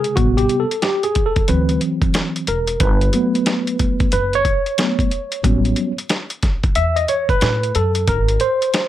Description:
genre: hip hop, jazz-hop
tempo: 91 BPM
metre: 4/4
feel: swing 63% on 16ths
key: unclear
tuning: A4 = 440 Hz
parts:
  - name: tine electric piano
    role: accompaniment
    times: 0.0-8.9 s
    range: C3 to E5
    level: -18 LUFS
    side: equal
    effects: overdrive, medium stereo tremolo, plate reverb
  - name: dusty soul sampler-style drum kit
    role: drums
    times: 0.0-8.9 s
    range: hi-hat, kick drum, snare drum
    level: -19 LUFS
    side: equal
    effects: overdrive
  - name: upright bass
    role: bass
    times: 0.2-8.4 s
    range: E1 to A2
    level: -19 LUFS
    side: equal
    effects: none
room: light reverb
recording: none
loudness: -16 LUFS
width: side -12 dB against mid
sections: 0.0-8.9 A section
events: tine electric piano solo 0.0-8.9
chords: 0.2 Am7; 1.5 D7; 2.8 Gmaj7 (rootless); 5.4 A13; 8.1 Ab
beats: | 0.17 0.83 1.49 2.15 | 2.81 3.47 4.12 4.78 | 5.44 6.10 6.76 7.42 | 8.08 8.74

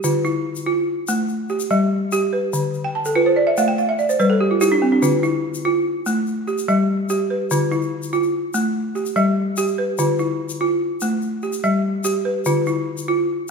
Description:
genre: west african traditional, West African string and xylophone music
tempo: 97 BPM (dotted quarters)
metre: 12/8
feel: straight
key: D dorian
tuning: A4 = 440 Hz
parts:
  - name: balafon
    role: arpeggios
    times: 0.0-13.5 s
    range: D3 to A5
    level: -18 LUFS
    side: equal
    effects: none
  - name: egg shaker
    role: percussion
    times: 0.0-13.1 s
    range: none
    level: -31 LUFS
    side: left 6 dB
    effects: none
room: wet recital hall reverb, RT60 1.6 s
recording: minimal, uncompressed stereo recording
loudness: -18 LUFS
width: side -5 dB against mid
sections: 0.0-13.5 A section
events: balafon fill 2.8-5.0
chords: 0.0 Dm; 1.3 G; 2.5 Dm; 3.8 N.C.; 5.0 Dm; 6.3 G; 7.5 Dm; 8.7 G; 10.0 Dm; 11.2 G; 12.5 Dm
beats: | 0.03 0.66 1.28 1.91 | 2.53 3.15 3.78 4.40 | 5.02 5.64 6.27 6.89 | 7.51 8.13 8.75 9.37 | 9.98 10.60 11.22 11.84 | 12.46 13.07

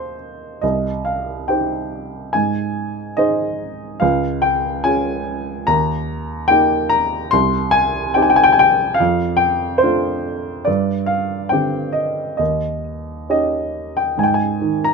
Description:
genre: classical, lyrical solo piano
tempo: 71 BPM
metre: 4/4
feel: rubato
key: C minor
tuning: A4 = 440 Hz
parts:
  - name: warm baby grand piano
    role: solo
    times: 0.0-14.9 s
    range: C2 to C6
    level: -16 LUFS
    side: equal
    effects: none
room: light reverb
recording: close, detailed microphones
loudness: -16 LUFS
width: side -4 dB against mid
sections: 0.6-14.2 A section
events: none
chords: 0.0 Eb; 0.6 Cm; 2.3 Ab; 4.0 Db; 5.7 Eb; 7.3 Cm; 9.0 F6; 10.7 Gsus4; 12.4 Eb7; 14.2 G#5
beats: | 0.63 1.49 2.35 3.19 | 4.02 4.86 5.69 6.51 | 7.34 8.17 9.00 9.83 | 10.68 11.53 12.40 13.31 | 14.20

